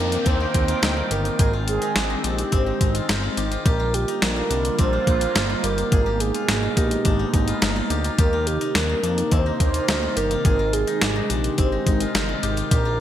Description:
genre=synth-pop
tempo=106 BPM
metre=4/4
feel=straight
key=unclear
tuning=A4 = 441 Hz
part: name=mellow horn-like synth lead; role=melody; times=0.0-13.0 s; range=G4 to C5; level=-26 LUFS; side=right 3 dB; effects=chorus
part: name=sweeping resonant pad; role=sustained chords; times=0.0-13.0 s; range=Cb3 to G5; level=-27 LUFS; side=equal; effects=chorus
part: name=steel-string zither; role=arpeggios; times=0.0-13.0 s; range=C4 to Ab4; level=-29 LUFS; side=left 3 dB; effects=digital delay
part: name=fat analog bass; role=bass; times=0.0-13.0 s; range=G1 to F2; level=-25 LUFS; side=equal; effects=none
part: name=downlifter and swell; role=sound effects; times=0.0-3.7, 12.7-13.0 s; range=none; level=-35 LUFS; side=equal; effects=none
part: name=clean 12-bit digital drum machine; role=drums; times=0.1-12.8 s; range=hi-hat, kick drum, snare drum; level=-22 LUFS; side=equal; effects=overdrive, gated reverb
room=light reverb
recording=bright 1980s-style digital production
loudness=-19 LUFS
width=side -11 dB against mid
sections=0.0-13.0 A section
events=none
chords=0.0 Eb6; 1.4 Abmaj7; 3.7 Bb6; 5.9 Abmadd9; 8.2 Eb6; 10.4 Abmaj7

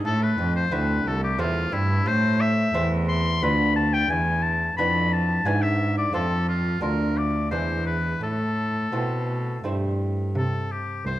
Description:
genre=classical, baroque-style sonata movement with continuo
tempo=88 BPM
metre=3/4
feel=straight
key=A minor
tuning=A4 = 440 Hz
part: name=lute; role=accompaniment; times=0.0-11.2 s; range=D2 to F4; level=-29 LUFS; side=right 1 dB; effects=none
part: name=rich cello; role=bass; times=0.0-11.2 s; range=C2 to C3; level=-24 LUFS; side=right 1 dB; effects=none
part: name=clear oboe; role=melody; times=0.1-11.2 s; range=E4 to C6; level=-26 LUFS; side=left 3 dB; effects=none
room=wet recital hall reverb, RT60 1.7 s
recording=none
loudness=-21 LUFS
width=side -14 dB against mid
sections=0.0-10.4 A section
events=none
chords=0.1 Am; 3.4 Bdim/D; 4.1 E7; 6.1 F; 6.8 Bb/D; 7.5 E7; 8.2 Am; 10.4 C

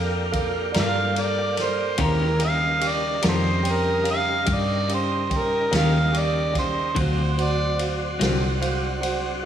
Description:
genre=slow blues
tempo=48 BPM (dotted quarters)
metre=12/8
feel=straight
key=unclear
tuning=A4 = 442 Hz
part: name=warm upright piano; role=accompaniment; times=0.0-9.5 s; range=Db4 to Db6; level=-30 LUFS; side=right 5 dB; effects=slapback echo
part: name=tonewheel organ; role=sustained chords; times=0.0-9.5 s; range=Db3 to Bb4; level=-30 LUFS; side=left 1 dB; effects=slow rotary speaker, chorus vibrato
part: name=vintage muted fingered electric bass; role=bass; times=0.0-9.4 s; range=C2 to G2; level=-25 LUFS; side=equal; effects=none
part: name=vintage drum kit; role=drums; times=0.3-9.2 s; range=kick drum, ride cymbal, snare drum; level=-29 LUFS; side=left 1 dB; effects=none
part: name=clean electric guitar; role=accompaniment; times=0.7-8.5 s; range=D3 to Bb4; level=-32 LUFS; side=left 5 dB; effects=tremolo, slapback echo
part: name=overdriven harmonica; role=melody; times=0.8-7.8 s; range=F4 to F5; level=-25 LUFS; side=right 2 dB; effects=slapback echo, digital delay
room=moderate concert hall reverb, RT60 2.1 s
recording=big arena sound, studio reverb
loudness=-20 LUFS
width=side -9 dB against mid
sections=0.0-9.5 A section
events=harmonica solo 0.0-9.5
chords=0.0 Gm7; 2.0 Eb7; 7.0 D7#9

